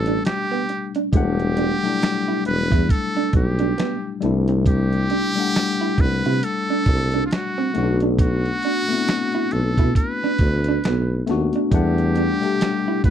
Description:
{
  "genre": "R&B, neo-soul",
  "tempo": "68 BPM",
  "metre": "4/4",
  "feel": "swing 59% on 16ths",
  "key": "E minor",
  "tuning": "A4 = 440 Hz",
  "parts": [
    { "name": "trumpet with metal mute", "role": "melody", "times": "0.0-13.1 s", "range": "F4 to B4", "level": "-25 LUFS", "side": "right 1 dB", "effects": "slapback echo" },
    { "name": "tine electric piano", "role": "accompaniment", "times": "0.0-13.1 s", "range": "F#3 to F#5", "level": "-24 LUFS", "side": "left 7 dB", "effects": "none" },
    { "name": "mellow tuba", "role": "bass", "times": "0.0-13.1 s", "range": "E1 to C3", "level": "-21 LUFS", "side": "right 1 dB", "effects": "none" },
    { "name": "electric guitar through a small old amp", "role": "second line", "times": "0.1-13.1 s", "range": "B3 to E4", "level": "-25 LUFS", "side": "right 7 dB", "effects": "warbly pitch drift" },
    { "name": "dusty soul sampler-style drum kit", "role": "drums", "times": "0.1-13.1 s", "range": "finger snaps, hi-hat, kick drum, snare drum", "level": "-20 LUFS", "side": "right 1 dB", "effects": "none" }
  ],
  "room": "little or no reverb",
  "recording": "dry, close 1970s-style studio recording",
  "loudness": "-18 LUFS",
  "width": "side -9 dB against mid",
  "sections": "0.0-13.1 A section",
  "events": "none",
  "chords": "0.0 Em11; 4.2 C69; 7.7 Bm7; 11.7 Em11"
}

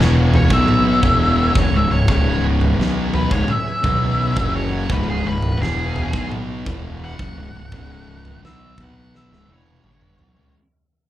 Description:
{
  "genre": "stoner and doom metal",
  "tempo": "85 BPM",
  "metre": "4/4",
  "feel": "straight",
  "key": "C# minor",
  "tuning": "A4 = 440 Hz",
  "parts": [
    { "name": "bright tonewheel organ", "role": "sustained chords", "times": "0.0-4.9 s", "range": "C#4 to C#5", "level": "-30 LUFS", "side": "right 1 dB", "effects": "slow rotary speaker, overdrive, chorus vibrato" },
    { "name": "thick fuzz guitar", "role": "riff", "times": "0.0-10.5 s", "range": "C#2 to B3", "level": "-22 LUFS", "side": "left 3 dB", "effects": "distortion" },
    { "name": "thick fuzz guitar", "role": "riff", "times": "0.0-10.5 s", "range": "C#2 to B3", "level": "-25 LUFS", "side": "right 4 dB", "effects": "distortion" },
    { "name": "fuzz fingered electric bass", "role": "bass", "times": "0.0-10.5 s", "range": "C#1 to C#2", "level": "-22 LUFS", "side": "equal", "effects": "overdrive" },
    { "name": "big rock drum kit", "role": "drums", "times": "0.0-10.5 s", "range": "kick drum, snare drum, toms", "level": "-22 LUFS", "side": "equal", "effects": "none" },
    { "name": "octave-fuzz lead guitar", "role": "melody", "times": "0.4-10.5 s", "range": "G#4 to F#5", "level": "-22 LUFS", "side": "equal", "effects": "distortion" }
  ],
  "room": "moderate large studio reverb, RT60 0.9 s",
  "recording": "band playing live in one room",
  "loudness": "-15 LUFS",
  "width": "side -13 dB against mid",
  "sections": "0.0-10.6 A section",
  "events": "fade-out 0.0-10.6; lead electric guitar solo 0.0-10.6; drum fill 9.1-10.6",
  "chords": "0.0 C#m"
}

